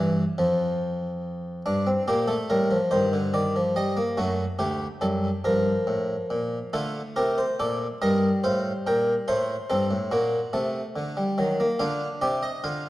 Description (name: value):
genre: classical, baroque-style 4-part fugue for harpsichord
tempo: 47 BPM (dotted quarters)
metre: 6/8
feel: straight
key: G minor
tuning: A4 = 440 Hz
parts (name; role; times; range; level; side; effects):
- harpsichord; solo; 0.0-12.9 s; D2 to C6; -23 LUFS; equal; none
room: wet concert hall reverb, RT60 1.8 s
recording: worn, warbling old tape, cassette tape, warbly pitch drift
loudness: -23 LUFS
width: side -16 dB against mid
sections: 0.0-6.7 A section; 6.7-12.9 B section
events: none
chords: 0.4 N.C.; 1.7 Gm; 2.9 Ebmaj13/G; 4.2 D; 5.4 Gm; 6.7 Bbmaj7; 8.0 Eb/G; 9.3 Gsus24; 10.5 D7/C; 11.8 Dm